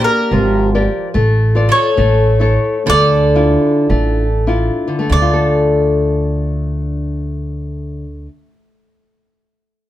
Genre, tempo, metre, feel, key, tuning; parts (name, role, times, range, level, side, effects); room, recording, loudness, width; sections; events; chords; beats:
fado-style ballad; 46-73 BPM; 2/4; rubato; D minor; A4 = 437 Hz
mandolin; melody; 0.0-8.3 s; Bb4 to D5; -16 LUFS; equal
picked twelve-string acoustic guitar; second line; 0.0-8.3 s; A3 to A4; -22 LUFS; right 3 dB
nylon-string guitar; accompaniment; 0.0-8.5 s; D3 to D5; -17 LUFS; left 2 dB
upright bass; bass; 0.0-8.3 s; G#1 to D2; -16 LUFS; equal
wet studio ambience, RT60 0.5 s; heard from further back in the room; -12 LUFS; side -13 dB against mid
0.0-5.1 A section; 5.1-9.9 B section
slowing down 1.1-5.1
0.0 Bb6; 1.1 Dm/A; 2.0 A; 2.9 Dmadd9; 5.1 Dm
0.32 | 1.14 1.98 | 2.87 3.90 | 5.11 6.40 | 7.66